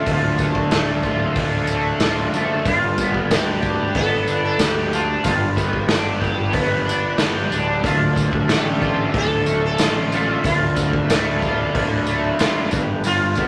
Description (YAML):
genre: psychedelic rock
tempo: 92 BPM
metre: 4/4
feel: straight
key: D dorian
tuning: A4 = 440 Hz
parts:
  - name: sitar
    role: melody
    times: 0.0-13.5 s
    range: F4 to A4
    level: -27 LUFS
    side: equal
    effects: none
  - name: hand-pumped harmonium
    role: sustained chords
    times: 0.0-13.5 s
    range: A4 to B5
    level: -32 LUFS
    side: equal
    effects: none
  - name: overdriven semi-hollow guitar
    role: riff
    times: 0.0-13.5 s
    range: D2 to G4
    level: -24 LUFS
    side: equal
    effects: rotary speaker
  - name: fuzz picked electric bass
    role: bass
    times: 0.1-13.5 s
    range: D1 to D2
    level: -28 LUFS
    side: equal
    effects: overdrive
  - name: raw garage drum kit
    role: drums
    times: 0.1-13.5 s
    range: hi-hat, kick drum, snare drum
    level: -25 LUFS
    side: equal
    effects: none
  - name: tambourine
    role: percussion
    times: 0.1-13.5 s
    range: none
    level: -36 LUFS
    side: equal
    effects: none
room: moderate club reverb, RT60 0.7 s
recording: none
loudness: -19 LUFS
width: mono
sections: 0.0-13.5 A section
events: none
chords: 0.0 Dm; 2.7 G; 7.8 Dm; 12.7 G